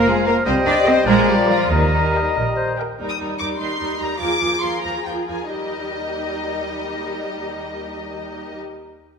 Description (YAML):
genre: quick classical-period movement for symphony orchestra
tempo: 84-105 BPM (dotted quarters)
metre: 6/8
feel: rubato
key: Eb major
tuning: A4 = 441 Hz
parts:
  - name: bright oboe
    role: second line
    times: 0.0-2.8 s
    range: D5 to F5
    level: -26 LUFS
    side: right 2 dB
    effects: none
  - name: hollow concert flute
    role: second line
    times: 0.0-2.8 s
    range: G5 to Bb5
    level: -25 LUFS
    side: left 4 dB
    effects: none
  - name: rich studio violin section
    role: second line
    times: 0.0-8.6 s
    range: Eb4 to D5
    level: -28 LUFS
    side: left 3 dB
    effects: none
  - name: warm clarinet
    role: second line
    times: 0.0-3.0 s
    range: Bb4 to C5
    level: -25 LUFS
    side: equal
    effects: none
  - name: mellow bassoon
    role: accompaniment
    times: 0.0-2.8 s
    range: F3 to G3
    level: -24 LUFS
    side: left 1 dB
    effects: none
  - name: mellow French horn section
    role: sustained chords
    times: 0.0-2.8 s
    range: F4 to Eb5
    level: -23 LUFS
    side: left 4 dB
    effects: none
  - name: rich studio cello section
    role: bass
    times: 0.0-8.6 s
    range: Eb2 to D4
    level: -22 LUFS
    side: right 2 dB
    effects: none
  - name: rich studio double bass section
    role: bass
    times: 0.0-2.9 s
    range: F1 to Eb2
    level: -23 LUFS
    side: right 2 dB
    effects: none
  - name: rich studio violin section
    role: melody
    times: 0.3-8.6 s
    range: Eb5 to Eb6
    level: -27 LUFS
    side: left 3 dB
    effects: none
  - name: warm studio viola section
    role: accompaniment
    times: 0.3-8.6 s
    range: F3 to Eb5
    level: -27 LUFS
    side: right 2 dB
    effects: none
room: wet scoring stage reverb, RT60 1.5 s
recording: minimal, uncompressed stereo recording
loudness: -18 LUFS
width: side -6 dB against mid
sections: 0.0-3.0 A section; 3.0-5.5 B section; 5.5-8.1 C section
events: slowing down 2.4-5.5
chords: 0.5 Cm; 1.1 Bb7; 1.7 Eb; 4.2 Bb7/Eb; 5.5 Eb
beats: | 0.46 1.07 | 1.71 2.36 | 3.00 3.60 | 4.20 4.83 | 5.52 6.17 | 6.83 7.49